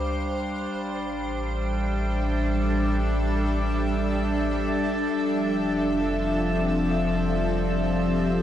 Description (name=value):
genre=ambient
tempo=free time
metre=none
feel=none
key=unclear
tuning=A4 = 439 Hz
part: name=glassy FM pad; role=sustained chords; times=0.0-8.4 s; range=F3 to F5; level=-25 LUFS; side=left 1 dB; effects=ensemble chorus, built-in reverb
part: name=round analog bass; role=bass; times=0.0-8.4 s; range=F1 to C#2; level=-28 LUFS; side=equal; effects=tube saturation
part: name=overtone-sweeping drone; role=drone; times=0.0-8.4 s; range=G3 to D4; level=-32 LUFS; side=left 1 dB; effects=chorus, built-in reverb
part: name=drifting glass-harmonics texture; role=texture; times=0.0-8.4 s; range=G5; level=-42 LUFS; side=right 2 dB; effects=chorus, built-in reverb
room=wet huge ambient reverb, RT60 7.4 s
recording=dark, warm production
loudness=-23 LUFS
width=side -11 dB against mid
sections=0.0-8.4 A section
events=fade-out on synth texture 0.0-8.4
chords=0.0 C#maj7; 0.7 A7sus4; 5.1 Fmaj7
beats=free time